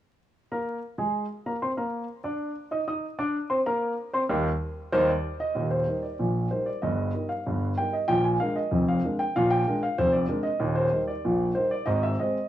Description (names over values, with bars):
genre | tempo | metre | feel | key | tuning
ragtime piano | 95 BPM | 2/4 | straight | Eb major | A4 = 441 Hz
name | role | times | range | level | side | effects
dark grand piano | solo | 0.5-12.5 s | Eb1 to Eb6 | -24 LUFS | equal | none
room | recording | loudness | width
studio ambience | home recording on cassette, vinyl crackle, small room ambience | -24 LUFS | side -12 dB against mid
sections
0.5-5.6 A section; 5.6-12.5 B section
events
none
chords
0.5 Eb5; 5.6 Eb; 6.8 Eb/G; 8.1 Bb7; 10.6 Eb; 11.9 Ab